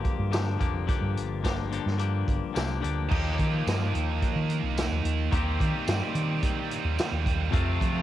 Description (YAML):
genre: indie rock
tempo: 108 BPM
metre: 4/4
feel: straight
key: C dorian from 3.1 s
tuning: A4 = 440 Hz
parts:
  - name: twangy electric guitar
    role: riff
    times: 0.0-8.0 s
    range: F2 to G4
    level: -33 LUFS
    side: left 10 dB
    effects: vibrato effect, cassette tape
  - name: vintage drum kit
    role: drums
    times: 0.0-7.9 s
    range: crash cymbal, hi-hat, kick drum, snare drum, tambourine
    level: -30 LUFS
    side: right 1 dB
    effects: cassette tape
  - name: fingered electric bass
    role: bass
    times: 0.2-8.0 s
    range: F1 to F3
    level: -28 LUFS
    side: right 1 dB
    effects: none
  - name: high-gain distorted guitar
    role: riff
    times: 3.1-8.0 s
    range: F2 to G4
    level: -31 LUFS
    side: right 10 dB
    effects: distortion, lush chorus, cassette tape, tape echo
room: little or no reverb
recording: home recording on cassette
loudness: -25 LUFS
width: side -13 dB against mid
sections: 0.0-3.1 A section; 3.1-8.0 B section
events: none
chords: 0.0 Gm7; 3.1 Ebadd9; 5.3 Cm7/Eb